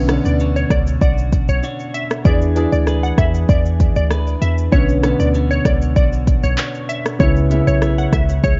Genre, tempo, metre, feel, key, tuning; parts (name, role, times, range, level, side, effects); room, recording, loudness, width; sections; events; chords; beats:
dancehall; 97 BPM; 4/4; straight; B dorian; A4 = 439 Hz
warm grand piano; accompaniment; 0.0-8.6 s; C#3 to G#4; -24 LUFS; equal; tape echo
twelve-string electric guitar; arpeggios; 0.0-8.6 s; B2 to C#5; -27 LUFS; equal; tape echo
warm 808-style bass; bass; 0.0-8.6 s; B1 to E2; -20 LUFS; equal
afro-pop drum kit; drums; 0.1-8.6 s; handclaps, hi-hat, kick drum, rim click, shaker; -19 LUFS; equal; overdrive
glassy wavetable pluck; melody; 0.3-8.5 s; C#5 to F#5; -26 LUFS; equal; chorus, tape echo
little or no reverb; echo-heavy mix, cassette tape, nothing above 7.6 kHz; -16 LUFS; mono
0.0-8.6 A section
0.0 Bmadd9; 2.3 E7; 4.7 Bmadd9; 7.2 C#m7
0.40 1.01 1.63 | 2.25 2.87 3.49 4.11 | 4.73 5.34 5.96 6.58 | 7.20 7.82 8.44